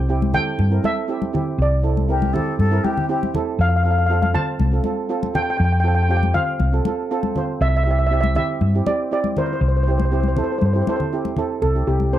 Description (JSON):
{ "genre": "calypso", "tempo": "120 BPM", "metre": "4/4", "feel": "straight", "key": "unclear", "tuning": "A4 = 440 Hz", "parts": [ { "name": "steel pan", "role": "melody", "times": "0.0-12.2 s", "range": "G4 to A5", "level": "-23 LUFS", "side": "equal", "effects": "analog delay" }, { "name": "hollow-body short-scale fingered electric bass", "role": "bass", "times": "0.0-12.2 s", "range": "C2 to G2", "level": "-18 LUFS", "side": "equal", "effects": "none" }, { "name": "steel pan", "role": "accompaniment", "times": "0.1-12.2 s", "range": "C4 to C5", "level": "-25 LUFS", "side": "right 5 dB", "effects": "none" }, { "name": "congas", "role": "percussion", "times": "0.2-12.1 s", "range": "none", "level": "-25 LUFS", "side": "left 3 dB", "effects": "none" }, { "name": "mellow concert flute", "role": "second line", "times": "2.1-3.4 s", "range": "G4 to A4", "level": "-25 LUFS", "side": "left 5 dB", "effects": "none" } ], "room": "moderate small room reverb, RT60 0.5 s", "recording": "dark, warm production", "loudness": "-17 LUFS", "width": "side -12 dB against mid", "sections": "0.0-11.6 A section", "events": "none", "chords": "0.0 C; 3.6 F; 7.6 C", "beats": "0.08 0.58 1.09 | 1.59 2.09 2.59 3.09 | 3.59 4.09 4.59 5.09 | 5.60 6.10 6.60 7.10 | 7.60 8.10 8.61 9.11 | 9.61 10.11 10.61 11.12 | 11.62 12.12" }